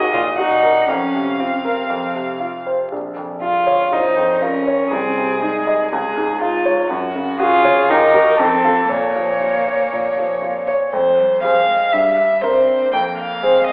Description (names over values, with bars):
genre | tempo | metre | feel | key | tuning
quick classical-period movement for piano trio | 120 BPM | 4/4 | straight | Bb minor | A4 = 441 Hz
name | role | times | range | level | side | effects
dark violin | melody | 0.0-13.7 s | F4 to G5 | -21 LUFS | equal | none
warm cello | second line | 0.0-13.7 s | F3 to Gb4 | -22 LUFS | equal | none
clear baby grand piano | accompaniment | 0.0-13.7 s | Bb1 to Eb5 | -22 LUFS | equal | none
room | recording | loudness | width
wet recital hall reverb, RT60 1.3 s | heard from further back in the room, vinyl crackle, telephone sound | -17 LUFS | mono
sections
0.0-10.9 A section; 10.9-13.7 B section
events
none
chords
0.0 Ebm; 0.9 Fsus4; 1.9 F5; 2.9 Bbm; 4.9 Ab/C; 5.9 Db; 6.9 Gb5; 7.9 Ebm; 8.4 F; 8.9 Bbm; 10.9 Fm; 11.9 C7/G; 12.9 Fm